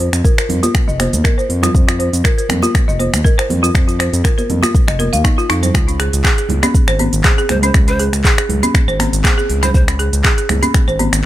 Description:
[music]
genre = afro house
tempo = 120 BPM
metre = 4/4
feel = swing 54% on 16ths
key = F minor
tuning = A4 = 440 Hz
[part]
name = folk marimba with hard mallets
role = arpeggios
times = 0.0-11.1 s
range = C4 to F5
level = -19 LUFS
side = equal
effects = sidechain pumping, low-pass filter, digital delay
[part]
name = smooth gliding synth bass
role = bass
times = 0.0-11.2 s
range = F1 to F2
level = -17 LUFS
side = equal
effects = sidechain pumping
[part]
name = afro-pop drum kit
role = drums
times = 0.0-11.2 s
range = finger snaps, handclaps, hi-hat, shaker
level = -19 LUFS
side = equal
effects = small room ambience
[part]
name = electronic kick drum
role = drums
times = 0.2-10.9 s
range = none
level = -13 LUFS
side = equal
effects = small room ambience
[part]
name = congas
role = percussion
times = 0.5-11.1 s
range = none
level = -22 LUFS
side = right 2 dB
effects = none
[part]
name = breathy bright large pan pipes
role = melody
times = 7.5-9.8 s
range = C5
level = -25 LUFS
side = right 2 dB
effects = digital delay
[sound]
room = small room ambience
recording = none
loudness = -12 LUFS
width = side -14 dB against mid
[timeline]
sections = 0.0-11.3 A section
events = filter sweep on marimba 0.0-11.3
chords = 0.0 F5; 5.7 Db5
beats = 0.24 0.74 1.25 | 1.75 2.25 2.75 3.25 | 3.75 4.25 4.75 5.25 | 5.75 6.25 6.75 7.25 | 7.75 8.24 8.74 9.24 | 9.74 10.24 10.74

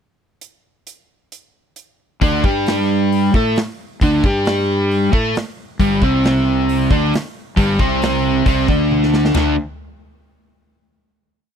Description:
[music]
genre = blues rock power trio and southern rock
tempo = 134 BPM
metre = 4/4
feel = straight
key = unclear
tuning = A4 = 445 Hz
[part]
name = big rock drum kit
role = drums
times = 0.4-9.5 s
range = hi-hat, kick drum, ride cymbal, snare drum, toms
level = -20 LUFS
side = equal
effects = none
[part]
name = overdriven electric guitar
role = riff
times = 2.2-9.6 s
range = G2 to A4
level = -16 LUFS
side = equal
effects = none
[part]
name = fuzz fingered electric bass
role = bass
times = 2.2-9.6 s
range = G1 to A2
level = -20 LUFS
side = equal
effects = overdrive
[sound]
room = little or no reverb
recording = dry, close 1970s-style studio recording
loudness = -14 LUFS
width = side -8 dB against mid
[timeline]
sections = 0.4-2.2 pickup bar; 2.2-9.4 riff; 9.4-11.2 final chord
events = drum fill 8.9-9.4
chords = 0.4 N.C.; 2.2 D5; 5.8 G5; 9.4 D5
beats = | 0.41 0.86 1.31 1.76 | 2.21 2.66 3.11 3.56 | 4.01 4.45 4.90 5.35 | 5.79 6.24 6.68 7.13 | 7.58 8.02 8.47 8.92 | 9.37

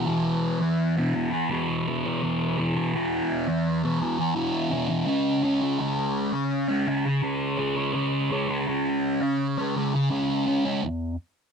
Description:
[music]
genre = rock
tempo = 84 BPM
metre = 4/4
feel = straight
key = unclear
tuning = A4 = 440 Hz
[part]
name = thick fuzz guitar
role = solo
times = 0.0-11.1 s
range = E2 to C#4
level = -23 LUFS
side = equal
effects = distortion, phaser
[sound]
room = light reverb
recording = dry, close 1970s-style studio recording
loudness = -23 LUFS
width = side -6 dB against mid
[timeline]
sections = 0.0-10.8 A section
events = none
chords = 0.0 E5; 5.1 C#5; 10.8 N.C.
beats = 0.05 0.77 1.49 | 2.21 2.92 3.64 4.36 | 5.08 5.80 6.51 7.23 | 7.95 8.67 9.39 10.11 | 10.82

